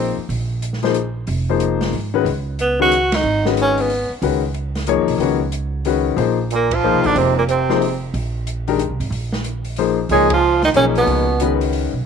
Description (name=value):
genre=modal jazz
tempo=184 BPM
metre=3/4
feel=swing 63% on 8ths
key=unclear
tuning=A4 = 439 Hz
part: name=breathy tenor saxophone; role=melody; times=0.0-0.2, 2.6-4.1, 6.5-8.0, 10.1-11.6 s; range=Bb3 to Ab4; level=-17 LUFS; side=right 1 dB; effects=none
part: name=warm concert grand piano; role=accompaniment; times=0.0-11.9 s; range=Eb3 to Db5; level=-19 LUFS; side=left 12 dB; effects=none
part: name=upright bass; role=bass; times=0.0-12.0 s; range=F1 to Ab2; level=-23 LUFS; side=right 2 dB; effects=none
part: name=open jazz drum kit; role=drums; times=0.3-11.8 s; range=hi-hat, kick drum, ride cymbal, snare drum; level=-29 LUFS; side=right 1 dB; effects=none
part: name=bright trombone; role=second line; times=6.5-8.0, 10.1-11.6 s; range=Bb2 to Ab3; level=-20 LUFS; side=right 13 dB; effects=none
room=moderate spring reverb, RT60 1.4 s, small room ambience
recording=1960s-style stereo with parts hard left and right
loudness=-16 LUFS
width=side -6 dB against mid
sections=0.0-12.1 A section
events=band accent 3.1, 6.7, 10.3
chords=0.0 Bb9sus4; 2.3 Db9sus4; 6.2 Bb9sus4; 10.1 Db9sus4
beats=| 0.30 0.63 0.95 | 1.28 1.61 1.94 | 2.26 2.59 2.92 | 3.24 3.57 3.90 | 4.22 4.55 4.88 | 5.20 5.53 5.86 | 6.18 6.51 6.84 | 7.16 7.49 7.82 | 8.14 8.47 8.80 | 9.12 9.45 9.78 | 10.10 10.43 10.76 | 11.08 11.41 11.74